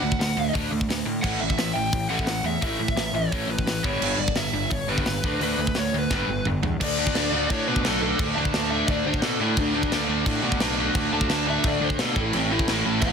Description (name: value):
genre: punk rock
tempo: 173 BPM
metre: 4/4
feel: straight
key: unclear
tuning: A4 = 442 Hz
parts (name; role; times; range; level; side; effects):
- lead guitar through a small cranked amp; melody; 0.0-13.1 s; C4 to A5; -29 LUFS; left 1 dB; overdrive, tape echo
- biting overdriven guitar; riff; 0.0-13.1 s; G2 to D4; -26 LUFS; equal; none
- fuzz picked electric bass; bass; 0.0-13.1 s; G1 to B2; -30 LUFS; equal; overdrive
- tight metal drum kit; drums; 0.1-13.1 s; crash cymbal, hi-hat, kick drum, snare drum, toms; -27 LUFS; equal; soft clipping on kick
room: little or no reverb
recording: dense, heavily limited modern master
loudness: -21 LUFS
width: side -6 dB against mid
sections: 0.0-6.8 A section; 6.8-13.1 B section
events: drum fill 6.1-6.8; lead electric guitar solo 6.8-13.1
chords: 0.0 D; 1.2 A5; 3.8 G; 5.2 D5; 6.1 G; 6.8 D5; 12.2 A5